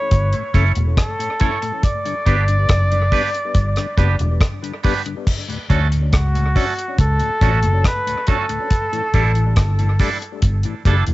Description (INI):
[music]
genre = roots reggae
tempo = 70 BPM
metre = 4/4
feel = straight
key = D major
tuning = A4 = 440 Hz
[part]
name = clear flugelhorn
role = melody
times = 0.0-10.0 s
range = F#4 to D5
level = -23 LUFS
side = equal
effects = cassette tape, tape echo
[part]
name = vintage muted fingered electric bass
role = bass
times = 0.1-11.1 s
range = E1 to D2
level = -16 LUFS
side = equal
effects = transformer saturation
[part]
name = deep reggae drum kit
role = drums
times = 0.1-11.1 s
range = crash cymbal, hi-hat, kick drum, rim click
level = -19 LUFS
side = equal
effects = cassette tape
[part]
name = mellow tonewheel organ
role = accompaniment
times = 0.3-11.1 s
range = D2 to D4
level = -28 LUFS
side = left 6 dB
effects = slow rotary speaker, cassette tape, analog delay
[part]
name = twangy electric guitar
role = accompaniment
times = 0.5-11.0 s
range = G3 to C#5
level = -26 LUFS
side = right 7 dB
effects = cassette tape, tape echo
[sound]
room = light reverb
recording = home recording on cassette, nothing above 7.8 kHz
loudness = -15 LUFS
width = side -18 dB against mid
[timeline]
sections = 0.0-5.3 A section; 5.3-11.1 B section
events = none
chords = 0.0 A; 1.8 G; 5.3 Dmaj7; 8.7 A7sus4